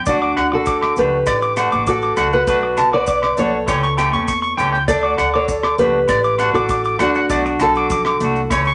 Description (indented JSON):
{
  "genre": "highlife guitar band",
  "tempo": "100 BPM",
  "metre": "4/4",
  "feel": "straight",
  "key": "D major",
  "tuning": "A4 = 441 Hz",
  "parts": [
    { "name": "upright bass", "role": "bass", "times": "0.0-8.7 s", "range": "A1 to E2", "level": "-29 LUFS", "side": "equal", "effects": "none" },
    { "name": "fingerpicked old ladder-braced acoustic guitar", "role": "melody", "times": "0.1-8.5 s", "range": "D4 to D5", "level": "-21 LUFS", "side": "equal", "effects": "none" },
    { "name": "clean electric guitar", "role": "accompaniment", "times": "0.1-8.7 s", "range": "E3 to G4", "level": "-26 LUFS", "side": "equal", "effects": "none" },
    { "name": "electric guitar at the edge of break-up", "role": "arpeggios", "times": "0.1-8.7 s", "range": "B4 to D6", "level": "-22 LUFS", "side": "equal", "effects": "none" },
    { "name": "damped 70s drum kit", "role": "drums", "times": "0.1-8.6 s", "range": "hi-hat, kick drum, rim click", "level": "-29 LUFS", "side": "equal", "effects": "none" },
    { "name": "maracas", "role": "percussion", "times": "0.1-8.7 s", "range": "none", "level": "-40 LUFS", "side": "equal", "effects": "none" },
    { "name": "agogo bells", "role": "percussion", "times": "0.4-8.7 s", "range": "none", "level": "-27 LUFS", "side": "equal", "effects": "none" },
    { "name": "congas", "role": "percussion", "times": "1.0-8.6 s", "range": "none", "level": "-31 LUFS", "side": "equal", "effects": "none" }
  ],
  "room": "wet studio reverb, RT60 0.7 s",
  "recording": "nothing above 10.7 kHz",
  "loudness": "-17 LUFS",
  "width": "mono",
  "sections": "0.0-8.7 A section",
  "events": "none",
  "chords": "0.1 D; 2.5 Bm7; 3.7 A7/C#; 4.9 D; 7.3 Bm7"
}